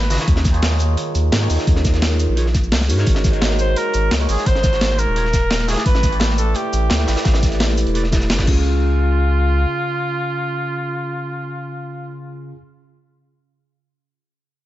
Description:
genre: liquid drum and bass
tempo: 172 BPM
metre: 4/4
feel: straight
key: Db mixolydian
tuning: A4 = 440 Hz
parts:
  - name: warm flugelhorn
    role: melody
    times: 0.0-0.3, 3.6-12.2 s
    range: F4 to C5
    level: -23 LUFS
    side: right 1 dB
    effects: digital delay
  - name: warm sub bass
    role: bass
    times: 0.0-9.7 s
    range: Eb1 to Ab2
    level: -18 LUFS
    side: equal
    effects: none
  - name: breakbeat sampler-style drum kit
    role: drums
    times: 0.0-8.5 s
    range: crash cymbal, hi-hat, shaker, snare drum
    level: -23 LUFS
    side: equal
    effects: studio reverb
  - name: crunchy breakbeat drum kit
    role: drums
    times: 0.0-8.5 s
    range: hi-hat, snare drum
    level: -28 LUFS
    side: equal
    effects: high-pass filter on hats, studio reverb, high-pass filter on snare, high-pass filter on room
  - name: overdriven tine electric piano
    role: accompaniment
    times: 0.1-12.6 s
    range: Db3 to Ab5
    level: -24 LUFS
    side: equal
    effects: phaser
  - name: electronic kick drum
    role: drums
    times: 0.3-8.5 s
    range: none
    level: -17 LUFS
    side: equal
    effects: overdrive, studio reverb
room: small room ambience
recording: nothing above 7.9 kHz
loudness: -15 LUFS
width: side -14 dB against mid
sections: 0.0-8.6 A section; 8.6-11.4 B section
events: drop 0.0-8.6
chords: 0.3 Eb9sus4; 2.9 Ab9sus4; 5.9 A9sus4; 8.5 Db

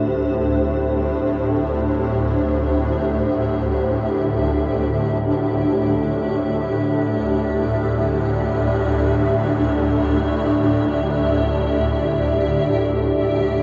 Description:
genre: dark ambient drone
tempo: free time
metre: none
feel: none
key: unclear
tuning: A4 = 439 Hz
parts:
  - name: granular cloud pad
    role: sustained chords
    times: 0.0-13.6 s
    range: D4 to E5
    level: -23 LUFS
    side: equal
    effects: built-in reverb
  - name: swarming drone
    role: drone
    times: 0.0-13.6 s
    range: D2 to A2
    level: -23 LUFS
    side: equal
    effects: built-in reverb
room: wet huge ambient reverb, RT60 9.2 s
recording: worn, warbling old tape, cassette tape, warbly pitch drift, nothing above 7.9 kHz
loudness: -20 LUFS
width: mono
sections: 0.0-13.6 A section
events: none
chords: 0.0 Dsus2

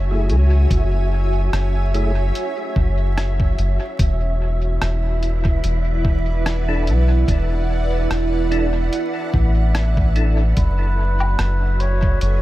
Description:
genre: ambient dub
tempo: 73 BPM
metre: 4/4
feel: swing 55% on 16ths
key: F# minor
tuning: A4 = 439 Hz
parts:
  - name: granular cloud pad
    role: sustained chords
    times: 0.0-12.4 s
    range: E4 to G#5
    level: -26 LUFS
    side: right 2 dB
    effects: built-in reverb
  - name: soft dub sub bass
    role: bass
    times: 0.0-12.4 s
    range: E1 to C#2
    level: -18 LUFS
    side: equal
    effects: none
  - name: wind-like tuned noise texture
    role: texture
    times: 0.0-12.4 s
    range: E5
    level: -33 LUFS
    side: right 2 dB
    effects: built-in reverb
  - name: percussive tonewheel organ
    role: stabs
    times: 0.1-10.4 s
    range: A3 to A4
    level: -31 LUFS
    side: left 2 dB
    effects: chorus vibrato, fast rotary speaker, low-pass filter, dub echo
  - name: lo-fi sampler-style drum kit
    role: drums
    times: 0.3-12.4 s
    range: hi-hat, rim click, woodblock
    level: -30 LUFS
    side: equal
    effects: studio reverb, dub echo
  - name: electronic kick drum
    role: drums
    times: 0.7-12.2 s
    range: none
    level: -19 LUFS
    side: equal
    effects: studio reverb
  - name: trumpet with cup mute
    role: melody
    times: 10.6-12.4 s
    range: B4 to C#5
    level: -26 LUFS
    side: right 1 dB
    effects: dub echo
room: little or no reverb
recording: vinyl crackle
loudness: -16 LUFS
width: side -16 dB against mid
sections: 0.0-12.4 A section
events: filter sweep on tonewheel organ 0.0-12.4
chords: 0.0 F#m9; 4.0 E7sus4; 10.6 F#m9

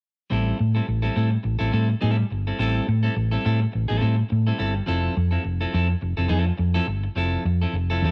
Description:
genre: disco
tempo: 105 BPM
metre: 4/4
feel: swing 56% on 16ths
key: unclear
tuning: A4 = 442 Hz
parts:
  - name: clean electric guitar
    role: accompaniment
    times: 0.3-8.1 s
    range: F3 to A4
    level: -29 LUFS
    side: equal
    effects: none
  - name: hollow-body short-scale fingered electric bass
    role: bass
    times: 0.3-8.1 s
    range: F1 to A2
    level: -24 LUFS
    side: equal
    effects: none
room: little or no reverb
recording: none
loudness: -23 LUFS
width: mono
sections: 0.3-8.1 A section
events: none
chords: 0.3 Am7; 4.9 Fmaj7

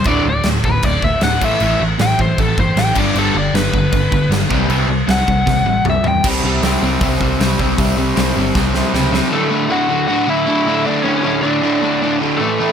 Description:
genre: punk rock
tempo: 156 BPM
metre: 4/4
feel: straight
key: D major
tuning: A4 = 439 Hz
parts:
  - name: biting lead guitar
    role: melody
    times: 0.0-6.3, 9.3-12.7 s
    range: A3 to G5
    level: -19 LUFS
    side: left 2 dB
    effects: overdrive, digital delay
  - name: crunchy overdriven guitar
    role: riff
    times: 0.0-12.7 s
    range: D2 to C4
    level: -17 LUFS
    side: equal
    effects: none
  - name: big rock drum kit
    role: drums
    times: 0.0-9.2 s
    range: crash cymbal, hi-hat, kick drum, snare drum, toms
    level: -19 LUFS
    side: equal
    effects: none
  - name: overdriven picked electric bass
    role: bass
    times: 0.1-9.2 s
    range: D1 to E2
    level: -20 LUFS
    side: right 1 dB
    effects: none
room: light reverb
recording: none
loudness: -13 LUFS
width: side -8 dB against mid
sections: 0.0-6.2 A section; 6.2-9.3 B section; 9.3-12.7 C section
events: lead electric guitar solo 0.0-6.2; drum fill 5.5-6.2, 8.6-9.3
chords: 0.1 D5; 1.4 A5; 3.0 G; 4.5 C5; 9.3 D

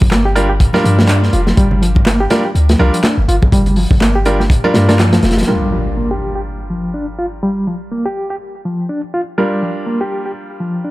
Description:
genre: breakbeat, breaks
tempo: 123 BPM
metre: 4/4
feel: swing 58% on 16ths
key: G minor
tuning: A4 = 440 Hz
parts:
  - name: warm 808-style bass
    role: bass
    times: 0.0-5.4 s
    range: F1 to G2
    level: -14 LUFS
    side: equal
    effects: none
  - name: crunchy breakbeat drum kit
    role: drums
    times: 0.0-5.5 s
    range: hi-hat, kick drum, snare drum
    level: -14 LUFS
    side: equal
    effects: none
  - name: congas and bongos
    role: percussion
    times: 0.0-5.5 s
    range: none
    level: -24 LUFS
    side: equal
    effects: none
  - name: reed electric piano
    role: riff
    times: 0.1-10.9 s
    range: F3 to G4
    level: -19 LUFS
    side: equal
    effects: fast tremolo, low-pass filter, dub echo
  - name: electronic handclaps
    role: drums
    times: 0.1-5.1 s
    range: none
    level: -23 LUFS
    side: equal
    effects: none
  - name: bright grand piano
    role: stabs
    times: 0.4-10.9 s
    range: G3 to Bb4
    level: -19 LUFS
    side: right 1 dB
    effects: vintage 12-bit sampler grit, low-pass filter, dub echo
  - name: impact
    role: sound effects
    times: 5.5-7.4 s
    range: none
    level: -23 LUFS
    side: equal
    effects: none
room: small room ambience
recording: none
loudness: -12 LUFS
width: side -18 dB against mid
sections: 0.0-5.5 A section; 5.5-10.9 B section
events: band accent 5.0; impact 5.5-7.4; filter sweep on reed electric piano 5.5-10.9; filter sweep on grand piano 5.5-10.9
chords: 0.0 Gm7

